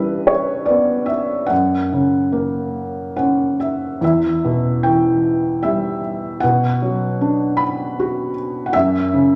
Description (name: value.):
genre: classical, lyrical solo piano.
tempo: 71-79 BPM.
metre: 3/4.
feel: rubato.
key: unclear.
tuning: A4 = 441 Hz.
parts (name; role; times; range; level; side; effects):
felt-muted upright piano; solo; 0.0-9.4 s; E2 to B5; -18 LUFS; equal; none.
room: wet recital hall reverb, RT60 1.4 s.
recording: none.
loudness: -19 LUFS.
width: mono.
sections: 0.0-9.4 A section.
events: felt piano fill 2.8-4.0.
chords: 0.0 Em/G; 1.5 F#; 4.0 Em; 6.4 Bm; 8.7 F#7(no3).